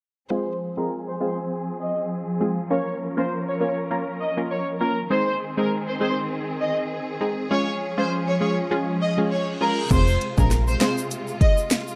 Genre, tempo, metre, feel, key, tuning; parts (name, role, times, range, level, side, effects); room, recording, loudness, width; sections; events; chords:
dancehall; 100 BPM; 4/4; swing 56% on 16ths; F minor; A4 = 440 Hz
rich studio violin section; melody; 0.3-11.5 s; Bb4 to Eb5; -29 LUFS; equal; low-pass filter, delay
punchy chord stab; accompaniment; 0.3-11.1 s; Ab3 to Bb4; -28 LUFS; equal; chorus, phaser, low-pass filter
warm studio string section; sustained chords; 0.3-12.0 s; C3 to Bb4; -31 LUFS; equal; sidechain pumping, low-pass filter
reverse cymbal; sound effects; 9.3-9.9 s; -38 LUFS; equal
plucky analog bass; bass; 9.9-10.8 s; F1 to Bb1; -23 LUFS; equal
afro-pop drum kit; drums; 9.9-11.9 s; crash cymbal, hi-hat, kick drum, rim click, snare drum; -23 LUFS; equal
tube shaker; percussion; 9.9-12.0 s; -39 LUFS; equal
light reverb; dark, warm production; -24 LUFS; mono
0.3-9.9 A section; 9.9-12.0 B section
filter sweep 0.3-9.9; reverse cymbal 9.3-9.9
0.3 Fm; 2.7 Bbm; 5.1 Ab; 7.5 Db; 9.9 Fm